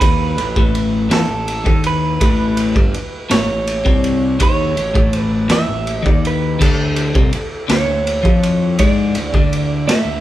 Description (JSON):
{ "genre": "psychedelic rock", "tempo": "55 BPM (dotted quarters)", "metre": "6/8", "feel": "straight", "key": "unclear", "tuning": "A4 = 440 Hz", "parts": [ { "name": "electric slide guitar", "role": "melody", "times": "0.0-10.2 s", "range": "A4 to E5", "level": "-21 LUFS", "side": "right 4 dB", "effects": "none" }, { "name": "twelve-string electric guitar", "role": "riff", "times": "0.0-10.2 s", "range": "G2 to A3", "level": "-18 LUFS", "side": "left 2 dB", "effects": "phaser" }, { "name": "fuzz picked electric bass", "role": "bass", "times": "0.0-10.2 s", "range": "G1 to A2", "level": "-23 LUFS", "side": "equal", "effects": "overdrive" }, { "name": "raw garage drum kit", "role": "drums", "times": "0.0-10.1 s", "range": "crash cymbal, kick drum, ride cymbal, snare drum", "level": "-17 LUFS", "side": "equal", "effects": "none" } ], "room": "light reverb", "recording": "band playing live in one room", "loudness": "-13 LUFS", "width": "side -14 dB against mid", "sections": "0.0-10.2 A section", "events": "none", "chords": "0.0 A; 6.6 D5", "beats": "| 0.02 1.12 | 2.22 3.32 | 4.42 5.51 | 6.61 7.70 | 8.80 9.89" }